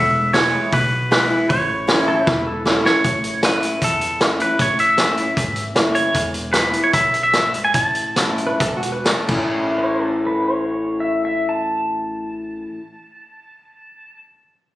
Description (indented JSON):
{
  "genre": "honky-tonk and classic country",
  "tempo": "123-155 BPM",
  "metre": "4/4",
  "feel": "straight",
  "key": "A major",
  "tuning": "A4 = 440 Hz",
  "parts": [
    { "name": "twangy electric guitar", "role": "melody", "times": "0.0-9.0 s", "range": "A4 to A5", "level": "-19 LUFS", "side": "equal", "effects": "tape echo" },
    { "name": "picked steel-string acoustic guitar", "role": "accompaniment", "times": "0.0-12.8 s", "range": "E2 to E4", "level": "-23 LUFS", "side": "left 2 dB", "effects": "none" },
    { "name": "upright bass", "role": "bass", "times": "0.0-12.6 s", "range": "E1 to E2", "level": "-29 LUFS", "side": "equal", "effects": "none" },
    { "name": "warm upright piano", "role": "accompaniment", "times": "0.3-6.1 s", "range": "E4 to E5", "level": "-25 LUFS", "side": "right 2 dB", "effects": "none" },
    { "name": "vintage drum kit", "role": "drums", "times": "0.3-9.4 s", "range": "crash cymbal, hi-hat, kick drum, snare drum", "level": "-21 LUFS", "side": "equal", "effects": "none" },
    { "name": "pedal steel guitar", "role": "second line", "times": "2.1-2.9, 8.5-14.2 s", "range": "E4 to A5", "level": "-25 LUFS", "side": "equal", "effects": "none" }
  ],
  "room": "moderate large studio reverb, RT60 1.2 s",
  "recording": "recorded on a phone in the room, studio reverb, compression",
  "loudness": "-16 LUFS",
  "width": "side -16 dB against mid",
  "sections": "0.0-3.0 A section; 3.0-9.5 B section; 9.5-13.4 C section",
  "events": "drum fill 2.3-3.0; slowing down 6.2-9.5",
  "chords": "0.0 E; 1.5 A; 6.2 E; 7.7 A"
}